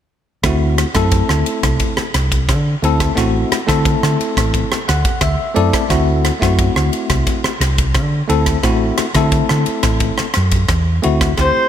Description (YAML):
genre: electric jazz fusion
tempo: 88 BPM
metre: 4/4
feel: straight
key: D mixolydian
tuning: A4 = 439 Hz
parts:
  - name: bell-like tine electric piano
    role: accompaniment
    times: 0.4-11.7 s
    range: A3 to F#5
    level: -18 LUFS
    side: left 2 dB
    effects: medium stereo tremolo
  - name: hollow-body short-scale fingered electric bass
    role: bass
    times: 0.4-11.6 s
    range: A1 to D3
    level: -17 LUFS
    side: equal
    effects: none
  - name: crisp fusion drum kit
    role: drums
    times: 0.4-11.5 s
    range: kick drum, ride cymbal, rim click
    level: -18 LUFS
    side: equal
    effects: gated reverb
  - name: breathy bright concert flute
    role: melody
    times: 11.4-11.7 s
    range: C5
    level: -15 LUFS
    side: right 2 dB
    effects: none
  - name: biting overdriven guitar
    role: second line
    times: 11.4-11.7 s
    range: C5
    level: -17 LUFS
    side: left 8 dB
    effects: none
room: light reverb, small room reverb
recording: bright 1980s-style digital production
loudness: -13 LUFS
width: side -10 dB against mid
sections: 0.4-11.4 A section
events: tine electric piano fill 4.5-5.9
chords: 0.4 D9